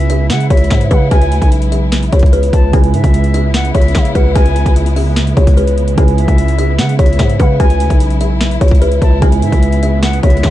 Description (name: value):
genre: hip hop, trap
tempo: 148 BPM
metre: 4/4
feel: half-time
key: C# minor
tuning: A4 = 440 Hz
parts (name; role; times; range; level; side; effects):
- kalimba; melody; 0.0-10.5 s; B4 to G#5; -18 LUFS; left 1 dB; ping-pong delay
- silver concert flute; second line; 0.0-10.5 s; E5 to A5; -24 LUFS; left 3 dB; ping-pong delay
- tine electric piano; accompaniment; 0.0-10.5 s; C#3 to B4; -19 LUFS; right 5 dB; none
- warm symphonic string section; sustained chords; 0.0-10.5 s; C#3 to E4; -23 LUFS; left 2 dB; none
- growling 808-style bass; bass; 0.0-10.5 s; B1 to C#3; -14 LUFS; equal; none
- trap drum kit; drums; 0.0-10.5 s; finger snaps, hi-hat, kick drum, snare drum; -12 LUFS; equal; overdrive, vintage 12-bit sampler grit
room: little or no reverb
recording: dark, warm production, nothing above 10.5 kHz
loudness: -9 LUFS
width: side -14 dB against mid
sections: 0.0-10.5 A section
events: none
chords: 0.0 C#m7